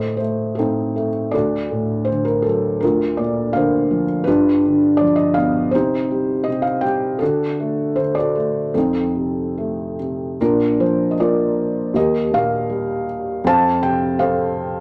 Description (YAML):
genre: classical, lyrical solo piano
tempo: 70-85 BPM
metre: 4/4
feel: rubato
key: Bb major from 10.4 s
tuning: A4 = 440 Hz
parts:
  - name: felt-muted upright piano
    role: solo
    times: 0.0-14.8 s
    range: D2 to A5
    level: -19 LUFS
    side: equal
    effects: none
room: moderate small room reverb, RT60 0.6 s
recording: none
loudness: -19 LUFS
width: mono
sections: 0.0-10.4 A section; 10.4-14.8 B section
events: none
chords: 0.0 Adim; 1.3 D; 2.8 Bbadd9/D; 4.3 G7; 5.7 Cm; 7.2 D; 8.7 F7; 10.4 Bb; 11.9 Ebadd9; 13.5 F